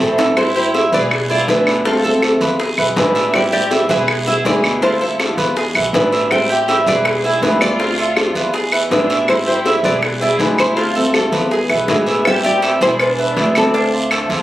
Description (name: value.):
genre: latin, Cuban son and guajira.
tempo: 162 BPM.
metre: 4/4.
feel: straight.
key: A harmonic minor.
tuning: A4 = 440 Hz.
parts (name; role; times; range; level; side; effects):
nylon-string guitar; melody; 0.0-13.9 s; G#4 to G5; -19 LUFS; equal; none.
dark symphonic violin section; second line; 0.0-13.9 s; B3 to C5; -23 LUFS; equal; none.
fingerpicked swing-style acoustic guitar; accompaniment; 0.0-14.4 s; B2 to F4; -19 LUFS; right 1 dB; none.
Cuban tres; arpeggios; 0.0-14.4 s; D4 to E5; -22 LUFS; right 1 dB; none.
upright bass; bass; 0.0-14.4 s; E1 to E2; -25 LUFS; equal; none.
guiro; percussion; 0.0-14.4 s; none; -25 LUFS; right 1 dB; none.
bongos and cowbell; percussion; 0.2-14.4 s; none; -23 LUFS; left 2 dB; none.
claves; percussion; 0.4-14.3 s; none; -20 LUFS; equal; none.
room: moderate studio reverb, RT60 0.5 s.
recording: recorded on a phone in the room, club ambience.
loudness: -13 LUFS.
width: side -14 dB against mid.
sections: 0.4-12.3 A section; 12.3-14.4 B section.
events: drum fill 0.0-0.4.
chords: 0.4 Am7; 1.1 E7; 1.9 Dm9; 2.6 E7; 3.3 Am7; 4.1 E7; 4.8 Dm9; 5.6 E7; 6.3 Am7; 7.1 E7; 7.8 Dm9; 8.5 E7; 9.3 Am7; 10.0 E7; 10.8 Dm9; 11.5 E7; 12.3 Am7; 13.0 E7; 13.7 Dm9.